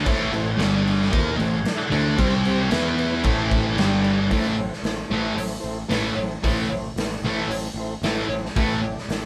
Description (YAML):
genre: garage rock duo or trio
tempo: 113 BPM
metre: 4/4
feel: straight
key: A minor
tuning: A4 = 440 Hz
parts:
  - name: combo organ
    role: sustained chords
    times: 0.0-9.3 s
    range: B3 to G5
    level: -34 LUFS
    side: equal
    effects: none
  - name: thick fuzz guitar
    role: riff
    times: 0.0-8.8 s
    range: G2 to E4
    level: -24 LUFS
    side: equal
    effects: distortion
  - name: growling picked electric bass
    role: bass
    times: 0.0-9.3 s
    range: G1 to E2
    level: -32 LUFS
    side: equal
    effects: overdrive
  - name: raw garage drum kit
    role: drums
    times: 0.1-9.2 s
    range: crash cymbal, hi-hat, kick drum, snare drum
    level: -29 LUFS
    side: equal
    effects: none
room: light reverb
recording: band playing live in one room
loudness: -23 LUFS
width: mono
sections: 0.0-4.3 A section; 4.3-9.3 B section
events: transistor combo organ fill 3.5-4.3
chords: 0.0 Am; 0.6 G5; 1.1 Am; 2.2 C5; 2.7 E5; 3.2 Am; 3.8 G5; 4.3 Am